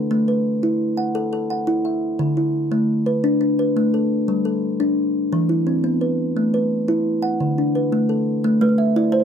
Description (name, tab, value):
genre	southern african traditional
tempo	115 BPM (dotted quarters)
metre	12/8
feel	straight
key	A dorian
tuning	A4 = 440 Hz
part	kalimba	arpeggios	0.0-9.2 s	D3 to F#5	-18 LUFS	equal	none
part	kalimba	arpeggios	8.6-9.2 s	A3 to E5	-19 LUFS	right 3 dB	slapback echo
room	little or no reverb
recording	close, detailed microphones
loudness	-18 LUFS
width	side -8 dB against mid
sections	0.0-8.4 A section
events	none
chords	0.1 A5; 2.2 D5; 4.3 G5; 5.3 E5; 6.4 A5; 7.4 D; 8.4 Am